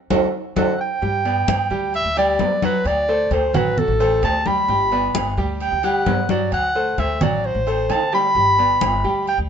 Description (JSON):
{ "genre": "latin, Cuban son and guajira", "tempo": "131 BPM", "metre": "4/4", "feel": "straight", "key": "G major", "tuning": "A4 = 440 Hz", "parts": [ { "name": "clear concert grand piano", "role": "arpeggios", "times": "0.1-9.4 s", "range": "F#3 to G5", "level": "-24 LUFS", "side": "equal", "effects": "none" }, { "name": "upright bass", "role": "bass", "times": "0.1-9.5 s", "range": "G1 to G3", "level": "-25 LUFS", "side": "left 1 dB", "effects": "none" }, { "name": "congas", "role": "percussion", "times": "0.1-9.5 s", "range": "none", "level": "-24 LUFS", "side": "left 3 dB", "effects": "none" }, { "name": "timbales and agogo bells", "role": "percussion", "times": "0.1-9.5 s", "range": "none", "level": "-26 LUFS", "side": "right 5 dB", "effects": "none" }, { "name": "warm clarinet", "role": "melody", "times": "0.6-9.4 s", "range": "A4 to B5", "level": "-19 LUFS", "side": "equal", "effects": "none" } ], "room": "light reverb", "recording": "band playing live in one room, nothing above 8.0 kHz", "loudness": "-17 LUFS", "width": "side -7 dB against mid", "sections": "0.0-1.0 A section; 1.0-9.5 A section", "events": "band accent 0.0-1.0; drum fill 0.3-1.0, 7.9-8.4", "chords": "0.0 D; 1.0 G; 2.9 D7; 4.7 G; 6.5 D7; 8.4 G" }